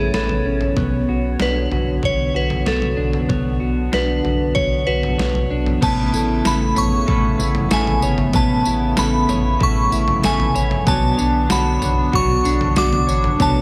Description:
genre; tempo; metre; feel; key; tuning
dream pop; 95 BPM; 4/4; straight; unclear; A4 = 440 Hz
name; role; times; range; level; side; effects
glassy synth bell; melody; 0.0-13.6 s; G#4 to D6; -24 LUFS; equal; chorus, tape echo
hollow soft pad; sustained chords; 0.0-13.6 s; C#3 to C#5; -27 LUFS; equal; chorus
electric guitar at the edge of break-up; arpeggios; 0.0-13.6 s; A3 to C#5; -26 LUFS; equal; subtle chorus, tape echo
warm sub bass; bass; 0.0-13.6 s; G#1 to B1; -25 LUFS; equal; none
celesta; texture; 0.0-13.6 s; F#4 to C#5; -36 LUFS; equal; none
detuned 8-bit digital drum machine; drums; 0.1-13.5 s; crash cymbal, kick drum, snare drum, tambourine, toms; -25 LUFS; equal; none
clean electric guitar; accompaniment; 5.8-13.6 s; A2 to C#5; -29 LUFS; equal; tremolo, subtle chorus
room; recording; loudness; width
light reverb; none; -18 LUFS; mono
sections
0.0-5.8 A section; 5.8-13.6 B section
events
none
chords
0.0 Aadd9; 0.8 Bmadd9; 5.8 Aadd9; 10.9 Bmadd9

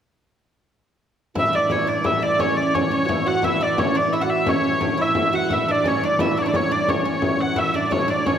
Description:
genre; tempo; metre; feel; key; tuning
medieval dance; 116 BPM (dotted quarters); 6/8; straight; A major; A4 = 439 Hz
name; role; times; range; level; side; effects
dark hurdy-gurdy; melody; 1.4-8.4 s; C#5 to F#5; -20 LUFS; equal; none
oud; second line; 1.4-8.4 s; C#4 to F#4; -25 LUFS; right 3 dB; none
pipe organ, flutes; drone; 1.4-8.4 s; A2 to E3; -29 LUFS; right 1 dB; none
frame drum; percussion; 1.4-8.4 s; none; -26 LUFS; left 3 dB; none
room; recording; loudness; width
wet concert hall reverb, RT60 2.2 s; none; -18 LUFS; side -8 dB against mid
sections
1.4-8.4 A section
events
none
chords
none

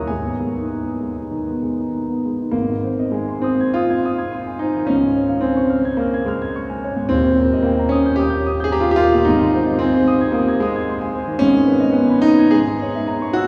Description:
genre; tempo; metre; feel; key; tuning
classical, romantic character piece for solo piano; 91-116 BPM; 4/4; rubato; Ab major; A4 = 440 Hz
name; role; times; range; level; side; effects
warm concert grand piano; solo; 0.0-13.5 s; Eb1 to Ab6; -18 LUFS; equal; none
room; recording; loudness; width
wet cathedral reverb, RT60 5.8 s; heard from further back in the room, small room ambience; -18 LUFS; mono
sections
0.0-2.5 A section; 2.5-13.5 B section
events
none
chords
0.1 G#m; 2.5 Ab; 4.9 Db; 7.1 Eb; 9.3 Ab; 11.4 G#m; 12.5 A#m7b5/G#

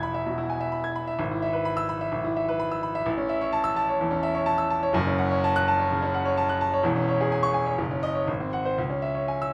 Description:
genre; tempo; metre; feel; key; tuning
classical, virtuoso piano study; 127 BPM; 4/4; rubato; unclear; A4 = 440 Hz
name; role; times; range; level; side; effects
clear grand piano; solo; 0.0-9.5 s; E1 to G#6; -26 LUFS; equal; none
room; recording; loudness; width
moderate large studio reverb, RT60 1.1 s; none; -26 LUFS; mono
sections
0.0-9.5 A section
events
none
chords
0.0 E; 1.2 E/G#; 3.1 A; 4.9 F#m; 6.8 C#m/E; 7.8 D#m7/F#; 8.3 G#7; 8.8 C#m

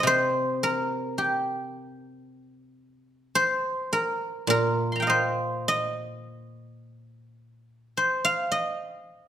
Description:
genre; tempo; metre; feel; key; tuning
chinese traditional, Chinese solo plucked strings; 53 BPM; 2/4; uneven beats, rubato; C yu mode; A4 = 438 Hz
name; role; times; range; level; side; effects
guzheng; solo; 0.0-9.3 s; Bb2 to C6; -24 LUFS; equal; none
room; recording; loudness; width
moderate recital hall reverb, RT60 1.3 s; none; -24 LUFS; side -10 dB against mid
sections
0.0-9.3 A section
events
none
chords
none

